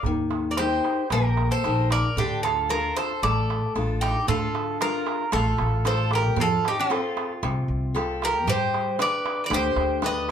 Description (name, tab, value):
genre	greek folk, Greek bouzouki band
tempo	114 BPM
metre	4/4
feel	straight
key	D phrygian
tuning	A4 = 440 Hz
part	mandolin	second line	0.0-10.3 s	C4 to B4	-30 LUFS	left 3 dB	none
part	upright bass	bass	0.0-10.3 s	A1 to G2	-27 LUFS	equal	none
part	darbuka	percussion	0.0-10.3 s	none	-31 LUFS	right 5 dB	none
part	picked steel-string acoustic guitar	accompaniment	0.1-10.3 s	C3 to B4	-29 LUFS	left 4 dB	none
part	Greek bouzouki	melody	0.5-10.3 s	F4 to Eb5	-26 LUFS	right 2 dB	none
room	wet small room reverb, RT60 0.5 s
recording	heard from further back in the room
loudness	-22 LUFS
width	side -8 dB against mid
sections	0.0-4.3 A section; 4.3-10.3 B section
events	none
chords	0.0 Eb; 2.2 Dm; 6.4 Fadd9; 8.5 G